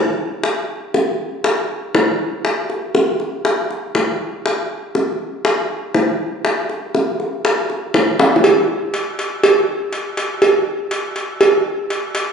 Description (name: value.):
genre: latin.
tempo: 120 BPM.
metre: 4/4.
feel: straight.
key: none.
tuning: none.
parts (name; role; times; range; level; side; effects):
bongos and cowbell; percussion; 0.4-12.3 s; none; -16 LUFS; equal; none.
room: wet large studio reverb, RT60 1.3 s.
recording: band playing live in one room, nothing above 10.8 kHz.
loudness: -16 LUFS.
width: side -6 dB against mid.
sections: 0.0-8.4 A section; 8.4-12.3 B section.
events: drum fill 8.2.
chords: none.